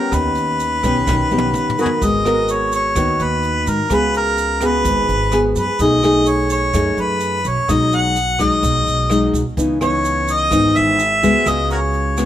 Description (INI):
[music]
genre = bossa nova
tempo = 127 BPM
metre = 4/4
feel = straight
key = unclear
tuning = A4 = 440 Hz
[part]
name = warm harmonica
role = melody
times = 0.0-12.3 s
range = F#4 to F#5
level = -18 LUFS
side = equal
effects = none
[part]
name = nylon-string guitar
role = accompaniment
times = 0.0-12.3 s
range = F#2 to Bb4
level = -18 LUFS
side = left 1 dB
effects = none
[part]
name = upright bass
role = bass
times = 0.1-12.3 s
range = G#1 to G#2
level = -23 LUFS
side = right 1 dB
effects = none
[part]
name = jazz brush drum kit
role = drums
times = 0.1-12.3 s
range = hi-hat, kick drum, rim click, snare drum, toms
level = -26 LUFS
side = right 1 dB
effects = none
[part]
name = tube shaker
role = percussion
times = 0.1-12.3 s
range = none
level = -32 LUFS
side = right 6 dB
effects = none
[sound]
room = light reverb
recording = none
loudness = -14 LUFS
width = side -11 dB against mid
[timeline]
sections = 0.0-2.0 A section; 2.0-12.3 B section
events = drum fill 1.1-2.0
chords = 0.1 Eb7alt; 2.0 G#m9; 3.9 C#7sus4; 5.8 B13; 7.7 B6; 9.6 C#m9; 11.5 C#7sus4